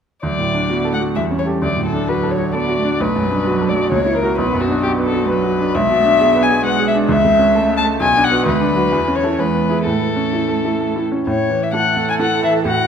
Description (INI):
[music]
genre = quick classical-period movement for piano trio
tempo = 130 BPM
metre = 3/4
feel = straight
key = D major, A major from 5.7 s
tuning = A4 = 440 Hz
[part]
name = muted violin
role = melody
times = 0.2-12.9 s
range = F#4 to A5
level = -18 LUFS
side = left 4 dB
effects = none
[part]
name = muted cello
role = second line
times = 0.2-12.9 s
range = E3 to A4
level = -22 LUFS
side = right 6 dB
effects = none
[part]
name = bright grand piano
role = accompaniment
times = 0.2-12.9 s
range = B1 to E5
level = -18 LUFS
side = equal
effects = none
[sound]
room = wet recital hall reverb, RT60 1.6 s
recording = none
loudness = -14 LUFS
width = side -7 dB against mid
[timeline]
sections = 0.2-11.3 A section; 11.3-12.9 B section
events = none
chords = 0.2 D; 1.2 A7/E; 1.6 D; 3.0 Bm7; 3.9 F#7/C#; 4.4 Bm; 5.7 E7/B; 7.1 A/C#; 8.0 Bm; 8.5 Bm/D; 8.9 A/E; 9.4 E; 9.9 A; 11.3 A5